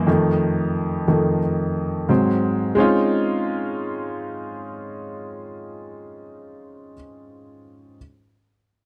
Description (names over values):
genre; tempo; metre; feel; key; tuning
soul; 89 BPM; 4/4; straight; Db major; A4 = 441 Hz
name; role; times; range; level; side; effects
clear baby grand piano; accompaniment; 0.0-8.0 s; F2 to F4; -23 LUFS; equal; none
room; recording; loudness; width
light reverb; dry, close 1970s-style studio recording; -21 LUFS; mono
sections
0.0-2.8 A section; 2.8-5.5 B section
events
grand piano solo 0.0-2.8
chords
0.1 F7; 2.1 Ab7; 2.8 Dbmaj9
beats
| 0.07 0.75 1.42 2.09 | 2.77 3.44 4.12 4.79